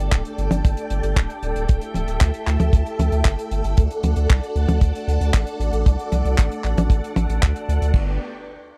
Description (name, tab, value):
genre	italo disco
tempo	115 BPM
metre	4/4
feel	straight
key	unclear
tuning	A4 = 440 Hz
part	string machine, full ensemble	sustained chords	0.0-8.2 s	A4 to G5	-30 LUFS	equal	ensemble chorus
part	round analog bass	bass	0.0-8.2 s	D1 to D2	-23 LUFS	equal	none
part	damped 70s drum kit	drums	0.1-8.1 s	crash cymbal, handclaps, hi-hat, toms	-28 LUFS	equal	none
part	kick drum	drums	0.1-8.0 s	none	-19 LUFS	equal	none
room	little or no reverb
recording	dry, close 1970s-style studio recording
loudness	-20 LUFS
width	mono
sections	0.0-7.9 A section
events	none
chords	0.0 Gsus2; 3.8 D; 7.9 G